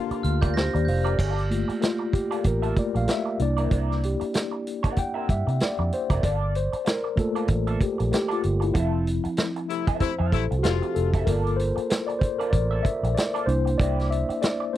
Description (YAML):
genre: lush 1970s-style soul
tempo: 95 BPM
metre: 4/4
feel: swing 58% on 16ths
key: G dorian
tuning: A4 = 439 Hz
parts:
  - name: mellow tine electric piano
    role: accompaniment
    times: 0.0-14.8 s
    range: F3 to G5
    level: -27 LUFS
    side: left 2 dB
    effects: medium stereo tremolo
  - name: bright horn section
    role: stabs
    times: 0.0-0.8, 9.7-11.1 s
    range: C3 to F4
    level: -30 LUFS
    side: left 15 dB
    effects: none
  - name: electric guitar through a small old amp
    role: riff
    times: 0.1-14.6 s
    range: Bb3 to F5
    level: -33 LUFS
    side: right 5 dB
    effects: wah
  - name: vintage muted fingered electric bass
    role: bass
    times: 0.1-14.3 s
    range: F1 to C3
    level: -25 LUFS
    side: right 1 dB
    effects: none
  - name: vintage drum kit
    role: drums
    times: 0.1-14.6 s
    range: crash cymbal, hi-hat, kick drum, snare drum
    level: -25 LUFS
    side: right 1 dB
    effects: none
  - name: glockenspiel with hard plastic mallets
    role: texture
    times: 0.2-1.3 s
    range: F6 to Bb6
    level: -37 LUFS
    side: right 6 dB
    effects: none
room: little or no reverb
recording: dry, close 1970s-style studio recording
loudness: -22 LUFS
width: side -13 dB against mid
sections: 0.0-1.2 A section; 1.2-14.8 B section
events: tine electric piano solo 1.2-14.8; band accent 8.8-11.3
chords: 0.0 Gm7; 1.2 Gm9; 3.4 C9; 6.2 Gm9; 8.8 Fmaj9; 11.3 Gm9; 13.5 C9